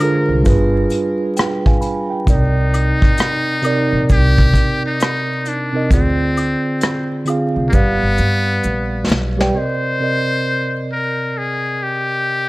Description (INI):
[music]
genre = lo-fi hip hop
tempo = 66 BPM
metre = 4/4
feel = swing 63% on 16ths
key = C minor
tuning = A4 = 438 Hz
[part]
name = trumpet with metal mute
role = melody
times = 0.0-12.5 s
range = Bb3 to C5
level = -21 LUFS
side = left 2 dB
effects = low-pass filter
[part]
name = mellow tine electric piano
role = accompaniment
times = 0.0-12.5 s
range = C3 to B5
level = -19 LUFS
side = right 2 dB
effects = medium stereo tremolo, cassette tape, low-pass filter
[part]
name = maracas and woodblock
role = percussion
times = 0.0-9.4 s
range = none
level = -30 LUFS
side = left 4 dB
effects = none
[part]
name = upright bass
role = bass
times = 0.3-9.5 s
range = G1 to G2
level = -18 LUFS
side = equal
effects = none
[part]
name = vintage brush drum kit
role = drums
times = 0.5-9.5 s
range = hi-hat, kick drum, rim click, snare drum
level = -16 LUFS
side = equal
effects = vintage 12-bit sampler grit
[sound]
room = light reverb, small room ambience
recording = vinyl crackle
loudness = -14 LUFS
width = side -20 dB against mid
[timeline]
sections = 0.0-9.5 A section; 9.5-12.5 B section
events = drum fill 7.7-9.5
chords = 0.5 G7b9; 2.3 Cm7; 5.9 Dm7b5; 7.7 G7; 9.5 Cm7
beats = 0.45 1.36 | 2.27 3.18 4.09 5.00 | 5.91 6.82 7.73 8.63 | 9.54 10.45 11.36 12.27